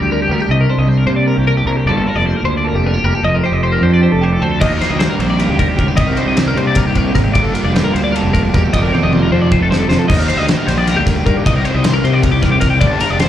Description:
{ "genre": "math rock and midwest emo", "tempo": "307 BPM (eighths)", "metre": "7/8", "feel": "straight", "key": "unclear", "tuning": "A4 = 440 Hz", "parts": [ { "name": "clean electric guitar", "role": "accompaniment", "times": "0.0-10.1 s", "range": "G2 to D5", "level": "-19 LUFS", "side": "right 5 dB", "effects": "warbly pitch drift" }, { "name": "twelve-string electric guitar", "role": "arpeggios", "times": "0.0-13.3 s", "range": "G4 to Eb5", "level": "-19 LUFS", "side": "left 4 dB", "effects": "analog chorus, slapback echo" }, { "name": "fuzz fingered electric bass", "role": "bass", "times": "0.0-13.3 s", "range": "E1 to C3", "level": "-16 LUFS", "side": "left 1 dB", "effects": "overdrive" }, { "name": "cranked stack guitar", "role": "riff", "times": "4.6-13.3 s", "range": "F2 to Eb4", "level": "-20 LUFS", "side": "right 1 dB", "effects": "overdrive, slapback echo" }, { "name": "loose indie drum kit", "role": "drums", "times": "4.6-13.3 s", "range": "crash cymbal, kick drum, ride cymbal, snare drum, toms", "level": "-17 LUFS", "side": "equal", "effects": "none" } ], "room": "little or no reverb", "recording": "live gig heard through the venue's PA, club reverb", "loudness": "-12 LUFS", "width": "side -11 dB against mid", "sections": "0.0-10.1 A section; 10.1-13.3 B section", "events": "drum fill 8.9-10.1", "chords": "0.5 Cm9; 1.9 Gm9; 3.2 F13; 4.6 Ebmaj13; 6.0 Cm9; 7.3 Gm9; 8.7 F13; 10.1 Eb6; 11.4 Cm7" }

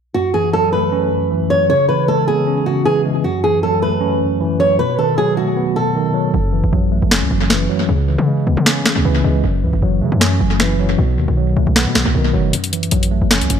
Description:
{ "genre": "hip hop, trap", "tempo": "155 BPM", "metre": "4/4", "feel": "half-time", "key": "F# dorian", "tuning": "A4 = 442 Hz", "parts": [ { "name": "flamenco guitar", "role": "melody", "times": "0.1-6.3 s", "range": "F#4 to C#5", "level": "-16 LUFS", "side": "right 2 dB", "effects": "analog delay" }, { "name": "tine electric piano", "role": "accompaniment", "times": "0.1-13.6 s", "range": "F#2 to C#4", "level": "-18 LUFS", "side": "equal", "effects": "medium stereo tremolo, low-pass filter" }, { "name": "hard-hitting 808-style bass", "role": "bass", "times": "6.3-13.6 s", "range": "F#1 to C#3", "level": "-17 LUFS", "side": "equal", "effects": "none" }, { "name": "trap drum kit", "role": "drums", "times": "7.1-13.6 s", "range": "finger snaps, hi-hat, snare drum", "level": "-17 LUFS", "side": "equal", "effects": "analog delay" } ], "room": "light reverb", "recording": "echo-heavy mix", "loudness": "-14 LUFS", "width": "side -8 dB against mid", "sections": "0.1-6.3 A section; 6.3-13.6 B section", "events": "hi-hats muted 6.3-12.5; filter sweep on tine electric piano 6.3-12.5; break 12.5-12.9", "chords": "0.1 F#m7; 1.7 C#m7; 3.2 F#m7; 4.8 B7; 6.3 F#m7; 7.9 C#m7; 9.4 F#m7; 11.0 B7; 12.5 F#m7" }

